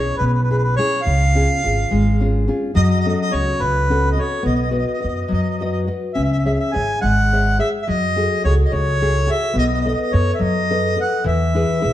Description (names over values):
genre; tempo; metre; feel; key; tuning
italian folk, Italian serenade; 71 BPM (dotted quarters); 6/8; rubato; unclear; A4 = 440 Hz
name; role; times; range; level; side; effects
mellow harmonica; melody; 0.0-11.9 s; B4 to G#5; -21 LUFS; equal; none
nylon-string guitar; accompaniment; 0.0-11.9 s; B2 to E5; -21 LUFS; left 2 dB; none
upright bass; bass; 0.0-11.9 s; G#1 to F#2; -19 LUFS; right 1 dB; none
room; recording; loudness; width
moderate recital hall reverb, RT60 1.5 s; dark, warm production; -16 LUFS; side -12 dB against mid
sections
0.0-11.9 A section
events
none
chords
0.0 E6; 1.1 C#; 2.8 F#m; 4.5 B; 6.2 C#m; 7.9 F#madd9; 9.6 B7; 11.3 E